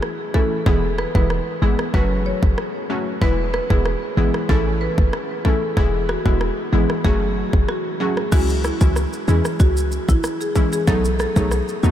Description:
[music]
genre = dancehall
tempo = 94 BPM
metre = 4/4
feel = straight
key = unclear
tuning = A4 = 440 Hz
[part]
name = glassy wavetable pluck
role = accompaniment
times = 0.0-11.9 s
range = E3 to F#4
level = -24 LUFS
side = equal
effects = chorus
[part]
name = island pop drum kit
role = drums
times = 0.0-11.9 s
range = crash cymbal, kick drum, rim click, shaker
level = -22 LUFS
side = equal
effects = none
[part]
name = marimba with hard mallets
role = melody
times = 0.3-11.9 s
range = E4 to C#5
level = -24 LUFS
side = left 1 dB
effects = diffuse ambient delay
[part]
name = short 808-style bass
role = bass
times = 0.7-11.9 s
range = E1 to E2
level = -20 LUFS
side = equal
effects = none
[sound]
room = moderate huge ambient reverb, RT60 9.0 s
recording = dreamy mix soaked in reverb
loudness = -17 LUFS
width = side -11 dB against mid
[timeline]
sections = 0.0-8.3 A section; 8.3-11.9 B section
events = none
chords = 0.0 A; 0.7 E; 1.9 F#m; 3.2 E; 4.5 A; 5.8 E; 7.0 F#m; 8.3 C#m; 10.9 B7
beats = 0.03 | 0.66 1.30 1.94 2.58 | 3.22 3.85 4.49 5.13 | 5.77 6.41 7.05 7.68 | 8.32 8.96 9.60 10.24 | 10.88 11.51

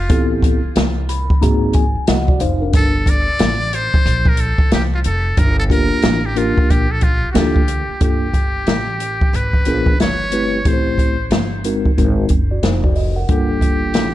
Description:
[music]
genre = hip hop, jazz-hop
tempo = 91 BPM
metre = 4/4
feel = swing 63% on 16ths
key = G minor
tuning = A4 = 440 Hz
[part]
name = trumpet with metal mute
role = melody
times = 0.0-14.1 s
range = F4 to D5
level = -22 LUFS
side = equal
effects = tape echo
[part]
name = upright bass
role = bass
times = 0.0-14.1 s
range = F1 to D2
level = -21 LUFS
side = equal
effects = none
[part]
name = mellow tine electric piano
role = accompaniment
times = 0.1-14.1 s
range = G3 to B5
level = -20 LUFS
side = left 1 dB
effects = medium stereo tremolo
[part]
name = open jazz drum kit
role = drums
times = 0.1-14.1 s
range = hi-hat, kick drum, snare drum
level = -16 LUFS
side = equal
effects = none
[sound]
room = light reverb, studio ambience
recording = dark, warm production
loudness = -14 LUFS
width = side -14 dB against mid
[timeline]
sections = 0.0-8.0 A section; 8.0-14.1 B section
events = muted trumpet solo 0.0-8.0; tine electric piano fill 0.8-2.7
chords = 0.1 Am9; 1.4 Ab9; 2.7 Gm9; 9.3 G#dim7; 10.7 Am7; 12.0 Ab9; 13.3 Gm9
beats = | 0.10 0.76 1.42 2.08 | 2.74 3.40 4.06 4.72 | 5.38 6.04 6.70 7.36 | 8.01 8.67 9.33 9.99 | 10.65 11.31 11.97 12.63 | 13.29 13.95

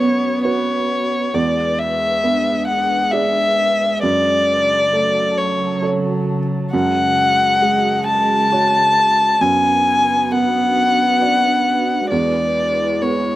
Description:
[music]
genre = neoclassical piano and strings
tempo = 67 BPM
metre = 3/4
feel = rubato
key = F# minor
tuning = A4 = 440 Hz
[part]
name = muted violin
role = melody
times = 0.0-13.4 s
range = C#5 to A5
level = -16 LUFS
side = left 2 dB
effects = slapback echo
[part]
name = muted cello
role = second line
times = 0.0-13.4 s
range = F#3 to B3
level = -24 LUFS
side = right 5 dB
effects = none
[part]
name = felt-muted upright piano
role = accompaniment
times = 0.0-13.4 s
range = E2 to D5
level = -23 LUFS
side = right 3 dB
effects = none
[part]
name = glassy FM pad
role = sustained chords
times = 0.0-13.4 s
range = C#3 to A5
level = -26 LUFS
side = equal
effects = ensemble chorus, built-in reverb, phaser
[sound]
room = little or no reverb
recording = recorded outdoors, with no room sound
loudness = -14 LUFS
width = side -15 dB against mid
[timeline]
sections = 0.0-13.4 A section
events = none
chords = 0.0 B5/F#; 1.3 E7; 4.0 F#madd9; 9.4 Bm/F#; 12.1 E7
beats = 0.45 | 1.35 2.24 3.13 | 4.03 4.93 5.83 | 6.72 7.62 8.52 | 9.41 10.32 11.21 | 12.11 13.01

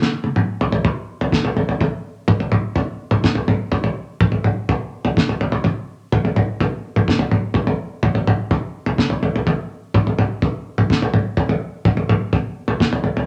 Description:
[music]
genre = rock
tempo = 126 BPM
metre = 4/4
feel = straight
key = none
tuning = none
[part]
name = cloth-damped thuddy drum kit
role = drums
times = 0.0-13.3 s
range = kick drum, snare drum, toms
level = -19 LUFS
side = equal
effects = none
[sound]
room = moderate studio reverb, RT60 0.5 s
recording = none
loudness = -20 LUFS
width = mono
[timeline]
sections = 0.9-13.3 A section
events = drum fill 0.0-0.9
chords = none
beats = 0.38 | 0.86 1.34 1.81 2.29 | 2.77 3.25 3.73 4.21 | 4.69 5.17 5.64 6.12 | 6.60 7.08 7.55 8.03 | 8.51 8.99 9.47 9.94 | 10.42 10.90 11.38 11.85 | 12.33 12.81

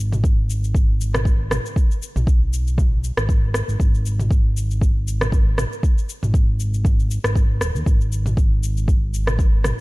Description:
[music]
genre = afro house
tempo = 118 BPM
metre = 4/4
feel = swing 55% on 16ths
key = G# minor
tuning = A4 = 440 Hz
[part]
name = smooth gliding synth bass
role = bass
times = 0.0-9.7 s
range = D#1 to D#2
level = -21 LUFS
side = equal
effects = sidechain pumping
[part]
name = deep house drum kit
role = drums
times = 0.1-9.8 s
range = cabasa, rim click, toms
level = -26 LUFS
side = equal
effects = none
[part]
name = electronic kick drum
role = drums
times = 0.2-9.5 s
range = none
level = -17 LUFS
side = equal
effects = none
[sound]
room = little or no reverb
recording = dark, warm production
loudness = -17 LUFS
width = side -22 dB against mid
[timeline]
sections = 0.0-9.8 A section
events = none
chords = none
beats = 0.24 0.75 1.25 | 1.76 2.27 2.78 3.29 | 3.80 4.31 4.82 5.32 | 5.83 6.34 6.85 7.36 | 7.87 8.37 8.88 9.39

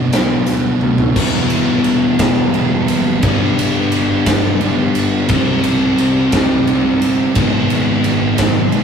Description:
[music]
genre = quiet-loud alternative rock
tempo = 58 BPM (dotted quarters)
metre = 6/8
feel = straight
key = E minor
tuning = A4 = 442 Hz
[part]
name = thick fuzz guitar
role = riff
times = 0.0-8.8 s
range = G2 to E4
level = -16 LUFS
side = right 2 dB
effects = distortion
[part]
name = fuzz picked electric bass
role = bass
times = 0.1-8.8 s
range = E1 to D2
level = -25 LUFS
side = equal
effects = overdrive
[part]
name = big rock drum kit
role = drums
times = 0.1-8.8 s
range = crash cymbal, hi-hat, kick drum, ride cymbal, snare drum, toms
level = -17 LUFS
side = equal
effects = none
[part]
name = biting overdriven guitar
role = riff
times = 1.2-8.8 s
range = E2 to C4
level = -18 LUFS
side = left 4 dB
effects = none
[sound]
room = moderate small room reverb, RT60 0.5 s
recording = rough rehearsal-room recording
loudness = -12 LUFS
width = side -7 dB against mid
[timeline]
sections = 0.0-1.2 A section; 1.2-8.8 B section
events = drum fill 0.8-1.2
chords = 0.0 Bm; 1.2 Em; 3.2 G; 5.3 Cm; 7.4 G#m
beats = 0.12 | 1.16 2.19 | 3.23 4.26 | 5.29 6.32 | 7.36 8.38

